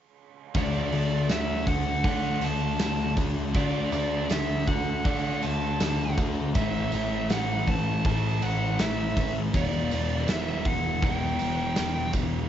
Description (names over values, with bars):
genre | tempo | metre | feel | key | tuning
rock, shoegaze and dream pop | 80 BPM | 4/4 | straight | D major | A4 = 437 Hz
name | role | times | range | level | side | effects
crunchy overdriven guitar | riff | 0.5-12.5 s | E2 to F#4 | -33 LUFS | right 11 dB | reverse reverb, cassette tape
thick fuzz guitar | riff | 0.5-12.5 s | E2 to D4 | -30 LUFS | left 7 dB | distortion, lush chorus, cassette tape
growling picked electric bass | bass | 0.5-12.5 s | E1 to D3 | -31 LUFS | equal | overdrive
huge arena drum kit | drums | 0.5-12.3 s | hi-hat, kick drum, snare drum | -30 LUFS | equal | none
tambourine | percussion | 0.5-12.3 s | none | -44 LUFS | right 13 dB | none
fuzz lead guitar | melody | 0.6-12.1 s | D5 to A5 | -31 LUFS | right 2 dB | distortion, analog delay
room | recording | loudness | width
light reverb | home recording on cassette, nothing above 7.6 kHz | -24 LUFS | side -10 dB against mid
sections
0.6-12.5 A section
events
none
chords
0.6 D; 6.6 A; 9.5 Em